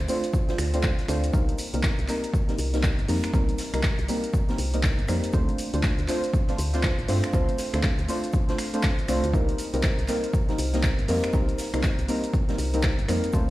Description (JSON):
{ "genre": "deep house", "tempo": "120 BPM", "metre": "4/4", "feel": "swing 61% on 16ths", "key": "C dorian", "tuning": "A4 = 439 Hz", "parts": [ { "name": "woody FM bass", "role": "bass", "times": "0.0-13.5 s", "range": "G1 to G2", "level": "-27 LUFS", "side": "equal", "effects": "sidechain pumping" }, { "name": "deep mellow chord stab", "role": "stabs", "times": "0.1-13.5 s", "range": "G3 to C5", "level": "-28 LUFS", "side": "equal", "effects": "chorus, sidechain pumping, digital delay" }, { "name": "deep house drum kit", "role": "drums", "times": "0.1-13.5 s", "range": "finger snaps, handclaps, hi-hat, shaker", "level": "-33 LUFS", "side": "equal", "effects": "none" }, { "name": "swinging big-band drum kit", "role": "drums", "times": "0.1-13.5 s", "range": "hi-hat, shaker, snare drum", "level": "-44 LUFS", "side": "right 1 dB", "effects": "sidechain pumping on hats, high-pass filter on hats, high-pass filter on snare, sidechain pumping on perc, high-pass filter on perc, high-pass filter on room" }, { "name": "electronic kick drum", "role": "drums", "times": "0.3-13.5 s", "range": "none", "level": "-24 LUFS", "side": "equal", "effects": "overdrive" } ], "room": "light reverb, small room ambience", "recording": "played on a big sound system in a bare room, stone room reverb", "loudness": "-22 LUFS", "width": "side -16 dB against mid", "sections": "0.0-13.5 A section", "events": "none", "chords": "0.0 Dm7; 1.3 Cm7; 5.3 Dm7; 9.3 Cm7" }